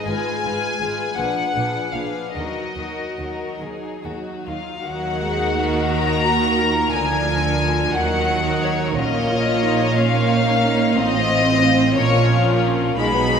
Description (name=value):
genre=classical, slow romantic movement for string orchestra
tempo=46-64 BPM (dotted quarters)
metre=6/8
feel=rubato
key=Eb minor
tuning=A4 = 441 Hz
part: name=warm studio violin section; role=melody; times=0.0-13.4 s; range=Db5 to Cb6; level=-22 LUFS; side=left 4 dB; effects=none
part: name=dark studio violin section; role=second line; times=0.0-13.4 s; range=Ab3 to Db5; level=-25 LUFS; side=left 3 dB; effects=none
part: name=warm studio viola section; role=accompaniment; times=0.0-13.4 s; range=F3 to Gb4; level=-24 LUFS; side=right 2 dB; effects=none
part: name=rich studio cello section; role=bass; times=0.1-13.4 s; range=Ab2 to Eb3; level=-27 LUFS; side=right 4 dB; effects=none
part: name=warm studio double bass section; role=bass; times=0.1-13.4 s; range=Ab1 to Eb2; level=-25 LUFS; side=right 3 dB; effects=none
room=wet concert hall reverb, RT60 1.8 s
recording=minimal, uncompressed stereo recording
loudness=-17 LUFS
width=side -7 dB against mid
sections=0.0-4.9 A section; 4.9-13.4 B section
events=none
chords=0.1 Fdim/Ab; 1.2 Bb7b9; 2.4 Ebm; 6.9 Bb7/D; 8.0 Ebm; 9.0 Bbm; 11.0 F7/A; 12.0 Bbm